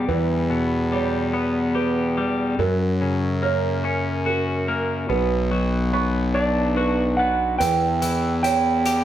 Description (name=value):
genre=post-rock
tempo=48 BPM (dotted quarters)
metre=6/8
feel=straight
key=E dorian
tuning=A4 = 440 Hz
part: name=felt-muted upright piano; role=arpeggios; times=0.0-9.0 s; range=A#4 to C#6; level=-28 LUFS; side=right 7 dB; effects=none
part: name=twelve-string electric guitar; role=arpeggios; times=0.0-9.0 s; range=E2 to G4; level=-25 LUFS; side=left 4 dB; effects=none
part: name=fuzz fingered electric bass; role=bass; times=0.0-9.0 s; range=B1 to F#2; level=-23 LUFS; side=equal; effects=overdrive
part: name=clean lap steel guitar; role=melody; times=6.3-9.0 s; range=D5 to G5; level=-22 LUFS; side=right 4 dB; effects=none
part: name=hi-hat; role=drums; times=7.6-9.0 s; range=none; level=-33 LUFS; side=left 2 dB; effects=none
room=wet large studio reverb, RT60 0.9 s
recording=band playing live in one room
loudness=-19 LUFS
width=side -11 dB against mid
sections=0.0-7.6 A section; 7.6-9.0 B section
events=none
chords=0.0 Em; 2.6 F#; 5.1 Bm; 7.6 Em